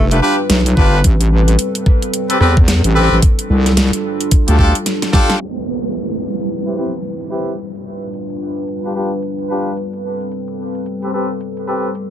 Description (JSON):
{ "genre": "glitch hop", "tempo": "110 BPM", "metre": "4/4", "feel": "swing 60% on 16ths", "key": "A minor", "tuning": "A4 = 440 Hz", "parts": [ { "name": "dark analog pad", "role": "sustained chords", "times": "0.0-12.1 s", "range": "G3 to B4", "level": "-22 LUFS", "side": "equal", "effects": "chorus, vintage 12-bit sampler grit, sidechain pumping" }, { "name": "wobble bass", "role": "bass", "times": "0.0-4.7 s", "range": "F1 to E2", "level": "-12 LUFS", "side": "equal", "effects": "chorus" }, { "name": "brilliant horn section", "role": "stabs", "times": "0.1-11.9 s", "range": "C4 to B4", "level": "-19 LUFS", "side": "left 1 dB", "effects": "sidechain pumping, dub echo" }, { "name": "dubstep drum kit", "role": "drums", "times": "0.1-12.1 s", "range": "hi-hat, rim click, snare drum", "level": "-18 LUFS", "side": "equal", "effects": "none" }, { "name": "electronic kick drum", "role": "drums", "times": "0.8-5.3 s", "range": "none", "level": "-12 LUFS", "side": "equal", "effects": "none" }, { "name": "downlifter", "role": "sound effects", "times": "5.4-9.8 s", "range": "none", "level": "-25 LUFS", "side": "right 4 dB", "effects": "none" } ], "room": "light reverb", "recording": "low-pass filter", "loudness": "-13 LUFS", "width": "side -11 dB against mid", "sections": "0.0-5.4 A section; 5.4-12.1 B section", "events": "drum fill 4.9-5.4; band accent 5.3; filter sweep 5.4-12.1", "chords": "0.0 G7; 1.0 Am9; 3.2 F69; 5.4 Cmaj7; 7.6 G7; 9.8 Am9" }